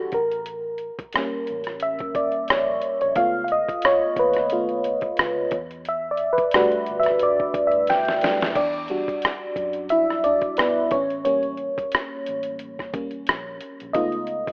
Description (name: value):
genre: R&B, neo-soul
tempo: 89 BPM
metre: 4/4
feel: swing 54% on 16ths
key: unclear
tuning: A4 = 440 Hz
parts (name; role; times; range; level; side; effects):
- FM electric piano; accompaniment; 0.0-14.5 s; E3 to G5; -21 LUFS; equal; chorus
- vintage muted fingered electric bass; bass; 0.0-14.4 s; F#1 to F#2; -44 LUFS; equal; none
- dusty soul sampler-style drum kit; drums; 0.1-14.5 s; crash cymbal, hi-hat, kick drum, rim click, snare drum; -25 LUFS; equal; none
room: light reverb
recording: rough home demo mix, telephone sound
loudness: -20 LUFS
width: side -36 dB against mid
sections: 0.0-8.6 A section; 8.6-14.5 B section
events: FM electric piano solo 0.0-8.6, 8.6-14.5; drum fill 7.9-8.6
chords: 0.1 A7b9; 3.2 C#7b13; 5.5 Em11; 8.6 Em9; 10.9 A7b9; 13.9 C#7b13